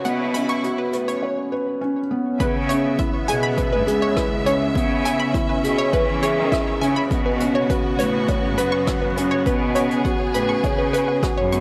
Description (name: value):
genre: piano and strings electronica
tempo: 102 BPM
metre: 4/4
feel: straight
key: C# minor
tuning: A4 = 440 Hz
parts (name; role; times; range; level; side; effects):
- clear studio string section; sustained chords; 0.0-11.6 s; C#3 to E5; -29 LUFS; equal; none
- analog pluck; arpeggios; 0.0-11.6 s; B4 to C#6; -28 LUFS; equal; chorus, phaser, sidechain pumping, tape echo
- felt-muted upright piano; riff; 0.0-11.6 s; B3 to C#5; -25 LUFS; equal; tape echo
- bright symphonic cello section; bass; 0.0-11.6 s; C#2 to E3; -29 LUFS; equal; sidechain pumping, high-pass filter
- jazz brush drum kit; drums; 0.0-11.6 s; hi-hat, rim click; -36 LUFS; equal; none
- electronic kick drum; drums; 2.4-11.3 s; none; -28 LUFS; equal; none
room: light reverb, small room ambience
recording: none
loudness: -21 LUFS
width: mono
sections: 0.0-2.4 A section; 2.4-11.6 B section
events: build-up 0.0-2.4; break 1.2-2.4; drop 2.4-11.6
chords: 0.0 Bsus2; 2.4 C#m7; 7.1 Bsus2